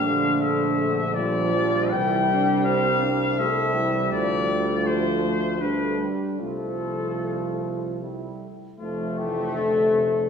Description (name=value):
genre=classical, hymn-like piece for brass band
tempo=73-84 BPM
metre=3/4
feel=rubato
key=F major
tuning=A4 = 435 Hz
part: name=mellow cornet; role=melody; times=0.0-10.3 s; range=F4 to G5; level=-26 LUFS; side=left 5 dB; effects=none
part: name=warm French horn section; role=second line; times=0.0-10.3 s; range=C4 to A4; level=-27 LUFS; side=right 3 dB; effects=none
part: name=bright trombone section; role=accompaniment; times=0.0-10.3 s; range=D3 to A3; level=-28 LUFS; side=left 1 dB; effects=none
part: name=warm trombone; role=accompaniment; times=0.0-10.3 s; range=C3 to A3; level=-32 LUFS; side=right 3 dB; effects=none
part: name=warm tuba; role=bass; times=0.0-10.3 s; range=F1 to D2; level=-28 LUFS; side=equal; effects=none
room=wet scoring stage reverb, RT60 1.8 s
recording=heard from further back in the room, small room ambience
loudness=-21 LUFS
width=side -6 dB against mid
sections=0.0-8.8 A section; 8.8-10.3 B section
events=none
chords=0.0 Gm/Bb; 1.9 C; 4.1 Dm; 5.6 G/D; 6.4 F/C; 8.0 C; 8.8 F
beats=0.42 1.16 | 1.93 2.66 3.39 | 4.10 4.83 5.60 | 6.40 7.21 8.01 | 8.80 9.57